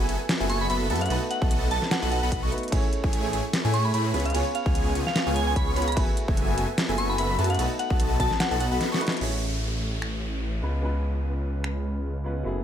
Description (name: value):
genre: future bass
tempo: 148 BPM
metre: 4/4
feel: swing 55% on 16ths, half-time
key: unclear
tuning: A4 = 440 Hz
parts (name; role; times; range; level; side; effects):
- clear grand piano; accompaniment; 0.0-12.6 s; F#3 to C#5; -34 LUFS; right 1 dB; sidechain pumping, ping-pong delay
- airy dreamy lead; arpeggios; 0.0-9.0 s; G#5 to C#6; -34 LUFS; equal; chorus, sidechain pumping, ping-pong delay
- supersaw chords; riff; 0.0-9.0 s; A3 to C#6; -30 LUFS; equal; sidechain pumping
- wide detuned saw bass; bass; 0.0-12.6 s; F#1 to A2; -27 LUFS; equal; chorus, sidechain pumping
- dubstep drum kit; drums; 0.1-11.7 s; crash cymbal, finger snaps, hi-hat, snare drum; -30 LUFS; equal; overdrive
- soft synth bell; melody; 0.5-8.8 s; E#5 to C#6; -30 LUFS; equal; chorus, phaser, sidechain pumping, ping-pong delay
- electronic kick drum; drums; 1.4-8.3 s; none; -26 LUFS; equal; overdrive
- downlifter; sound effects; 9.2-12.5 s; none; -38 LUFS; equal; none
room: light reverb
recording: none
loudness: -23 LUFS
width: side -9 dB against mid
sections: 0.0-9.2 A section; 9.2-12.6 B section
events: drop 0.0-9.2; drum fill 8.8-9.2; band accent 9.1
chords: 0.0 F#m11; 1.1 B7; 2.7 Amaj7; 4.1 C#7; 6.0 F#m11; 7.6 B7; 9.2 Amaj7; 10.6 C#7